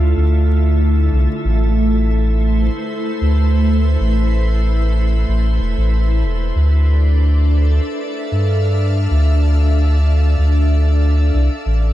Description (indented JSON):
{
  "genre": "ambient dub",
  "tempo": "94 BPM",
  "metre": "4/4",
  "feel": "swing 54% on 16ths",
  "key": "D dorian",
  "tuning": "A4 = 438 Hz",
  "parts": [
    { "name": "soft additive organ-like pad", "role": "sustained chords", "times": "0.0-11.9 s", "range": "D3 to F5", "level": "-21 LUFS", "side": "right 1 dB", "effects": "ensemble chorus, built-in reverb" },
    { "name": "soft dub sub bass", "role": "bass", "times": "0.0-11.9 s", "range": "E1 to G2", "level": "-13 LUFS", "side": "equal", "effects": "none" }
  ],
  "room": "little or no reverb",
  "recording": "dark, warm production, vinyl crackle",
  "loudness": "-13 LUFS",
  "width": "side -14 dB against mid",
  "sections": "0.0-11.9 A section",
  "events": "none",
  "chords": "0.0 Dmadd9; 1.4 Am; 6.5 Dm9"
}